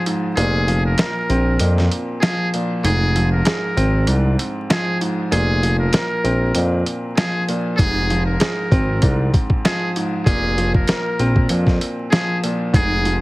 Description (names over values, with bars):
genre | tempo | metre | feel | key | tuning
hip hop, boom-bap hip-hop | 97 BPM | 4/4 | swing 55% on 16ths | unclear | A4 = 444 Hz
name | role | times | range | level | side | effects
trumpet with metal mute | melody | 0.0-13.2 s | Ab4 to Bb4 | -24 LUFS | equal | high-pass filter, low-pass filter, digital delay
warm concert grand piano | accompaniment | 0.0-13.2 s | Ab2 to Bb4 | -22 LUFS | equal | cassette tape, high-pass filter, low-pass filter
boom bap sampler-style drum kit | drums | 0.1-13.2 s | hi-hat, kick drum, snare drum | -19 LUFS | equal | none
smooth synth bass | bass | 0.4-13.2 s | F1 to F2 | -18 LUFS | equal | none
room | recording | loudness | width
little or no reverb | heavily compressed radio sound, multiband compression, vinyl crackle | -16 LUFS | side -20 dB against mid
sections
0.0-13.2 A section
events
break 0.0-7.8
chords
0.4 Bbsus2/F; 2.8 Fm; 5.3 Bbsus2/F; 7.8 Fm; 10.3 Bbsus2/F